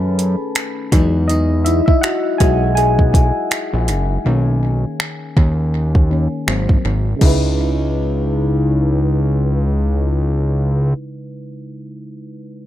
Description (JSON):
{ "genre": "contemporary R&B", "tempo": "81 BPM", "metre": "4/4", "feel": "swing 58% on 16ths", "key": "C# dorian", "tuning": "A4 = 440 Hz", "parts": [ { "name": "FM electric piano", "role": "accompaniment", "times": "0.0-12.7 s", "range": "C#3 to B5", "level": "-20 LUFS", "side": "left 2 dB", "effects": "chorus, phaser, low-pass filter, tape echo" }, { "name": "fat analog bass", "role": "bass", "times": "0.0-10.9 s", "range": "F#1 to F#2", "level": "-16 LUFS", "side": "equal", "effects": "none" }, { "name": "downlifter", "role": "sound effects", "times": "0.8-1.3 s", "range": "none", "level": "barely audible", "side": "none", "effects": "none" }, { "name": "smooth R&B drum kit", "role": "drums", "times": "0.2-7.4 s", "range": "crash cymbal, finger snaps, hi-hat, kick drum", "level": "-16 LUFS", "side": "equal", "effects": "tape echo" } ], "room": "digital ambience", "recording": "echo-heavy mix", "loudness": "-14 LUFS", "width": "side -12 dB against mid", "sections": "0.0-7.2 A section; 7.2-10.2 B section", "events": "FM electric piano solo 0.0-7.2; filter sweep on FM electric piano 0.0-7.2", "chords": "0.0 B7; 0.9 Emaj7; 4.3 Bmaj7; 6.5 G#7; 7.2 C#m7", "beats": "0.55 | 1.29 2.03 2.77 3.51 | 4.25 4.99 5.73 6.47 | 7.21 7.96 8.70 9.44" }